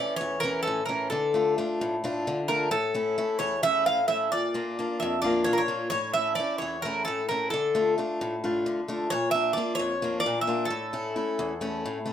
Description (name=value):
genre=greek folk, Greek bouzouki band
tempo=263 BPM (eighths)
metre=7/8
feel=straight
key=unclear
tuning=A4 = 440 Hz
part: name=Greek bouzouki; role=melody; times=0.0-11.8 s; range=A4 to F5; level=-26 LUFS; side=equal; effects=none
part: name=picked acoustic archtop guitar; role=accompaniment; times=0.0-12.1 s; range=E2 to F4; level=-29 LUFS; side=left 1 dB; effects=none
room=wet studio reverb, RT60 0.6 s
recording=none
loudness=-25 LUFS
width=side -9 dB against mid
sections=0.0-12.1 A section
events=none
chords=0.0 A; 1.1 Dm; 2.7 A; 4.3 Bb; 5.9 A; 7.5 Dm; 9.1 Bb; 10.7 A